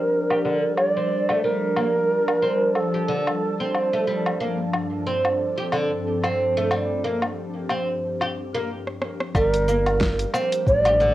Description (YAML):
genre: organic downtempo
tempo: 91 BPM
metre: 4/4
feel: swing 57% on 16ths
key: G minor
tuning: A4 = 440 Hz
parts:
  - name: mellow low Native American-style wooden flute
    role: melody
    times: 0.0-3.7, 9.4-11.1 s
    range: A4 to D5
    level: -22 LUFS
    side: right 1 dB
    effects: cassette tape, tape echo
  - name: ethereal airy pad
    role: sustained chords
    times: 0.0-11.1 s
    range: G2 to A5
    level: -29 LUFS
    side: left 1 dB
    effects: ensemble chorus, built-in reverb, sidechain pumping, cassette tape
  - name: bronze singing bowl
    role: texture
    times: 0.0-8.7 s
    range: D4 to D5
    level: -36 LUFS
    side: equal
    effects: none
  - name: oud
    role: arpeggios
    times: 0.3-11.1 s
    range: D3 to G4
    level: -25 LUFS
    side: right 1 dB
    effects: low-pass filter, cassette tape, analog delay
  - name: deep house drum kit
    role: drums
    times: 0.3-11.1 s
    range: cabasa, hi-hat, rim click, snare drum, woodblock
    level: -26 LUFS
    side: left 1 dB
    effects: overdrive, low-pass filter on hats, cassette tape, low-pass filter on perc, low-pass filter on snare
  - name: smooth synth bass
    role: bass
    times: 9.3-11.1 s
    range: G1 to A1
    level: -25 LUFS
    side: equal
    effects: sidechain pumping
  - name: electronic kick drum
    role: drums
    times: 9.3-10.8 s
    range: none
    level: -24 LUFS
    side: equal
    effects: cassette tape
room: wet studio reverb, RT60 0.6 s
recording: home recording on cassette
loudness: -20 LUFS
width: side -14 dB against mid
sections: 0.0-9.3 A section; 9.3-11.1 B section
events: filter sweep on oud 0.0-9.3; filter sweep on ambient pad 0.0-9.3; drum fill 8.9-9.3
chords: 0.0 Gm7; 4.1 Bbmaj9/G (rootless)